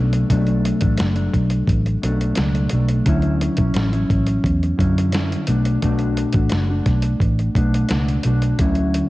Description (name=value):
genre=indie pop, bedroom pop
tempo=87 BPM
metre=4/4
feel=straight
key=B minor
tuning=A4 = 440 Hz
part: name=mellow electric guitar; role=accompaniment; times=0.0-9.1 s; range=B2 to F#4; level=-21 LUFS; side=left 1 dB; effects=wide subtle chorus, warbly pitch drift, cassette tape
part: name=vintage muted fingered electric bass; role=bass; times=0.0-9.0 s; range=F#1 to F#2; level=-20 LUFS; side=equal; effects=none
part: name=lo-fi sampler-style drum kit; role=drums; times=0.1-9.1 s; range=hi-hat, kick drum, snare drum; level=-23 LUFS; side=equal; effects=cassette tape
room=light reverb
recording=home recording on cassette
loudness=-16 LUFS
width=side -18 dB against mid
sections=0.0-9.1 A section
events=none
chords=0.0 Bm7; 3.1 Dmaj9; 5.5 Bm7